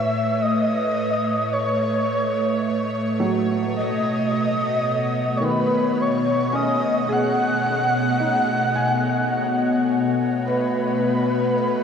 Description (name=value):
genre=ambient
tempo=54 BPM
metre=3/4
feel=straight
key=unclear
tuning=A4 = 442 Hz
part: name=breathy flute-like synth lead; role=melody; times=0.0-11.8 s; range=B4 to F#5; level=-22 LUFS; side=equal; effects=ensemble chorus, tape echo
part: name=warbly tape-like pad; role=sustained chords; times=0.0-11.8 s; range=A2 to F#5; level=-23 LUFS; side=left 1 dB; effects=chorus, built-in reverb
part: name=felt-muted upright piano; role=arpeggios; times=0.0-11.8 s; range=D#3 to C#6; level=-30 LUFS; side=equal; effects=tape echo
part: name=bowed-like drone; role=drone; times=0.0-11.8 s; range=A3 to C#5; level=-28 LUFS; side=right 4 dB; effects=built-in reverb
room=wet huge ambient reverb, RT60 8.6 s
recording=dark, warm production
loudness=-19 LUFS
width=side -7 dB against mid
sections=0.0-11.8 A section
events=none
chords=0.0 A; 3.8 B